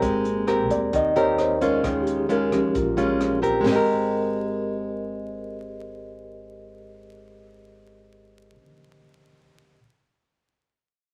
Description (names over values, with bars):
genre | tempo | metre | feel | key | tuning
bossa nova | 132 BPM | 4/4 | straight | Ab major | A4 = 439 Hz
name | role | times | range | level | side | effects
mellow tine electric piano | accompaniment | 0.0-9.8 s | F3 to Eb5 | -28 LUFS | equal | none
nylon-string guitar | accompaniment | 0.0-8.7 s | Bb2 to Bb4 | -26 LUFS | equal | none
upright bass | bass | 0.0-8.6 s | Ab1 to Eb2 | -41 LUFS | equal | none
compact cocktail drum kit | drums | 0.0-3.8 s | hi-hat, kick drum, rim click, snare drum, toms | -33 LUFS | equal | none
room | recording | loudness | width
moderate small room reverb, RT60 0.6 s | vinyl crackle | -23 LUFS | mono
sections
0.0-3.7 A section; 3.7-7.3 B section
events
tine electric piano solo 0.0-3.7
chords
0.0 Abmaj9; 1.8 Eb9sus4; 3.7 Abmaj9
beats
| 0.02 0.48 0.93 1.38 | 1.84 2.29 2.75 3.20 | 3.65 4.11 4.56 5.01 | 5.47 5.92 6.37 6.83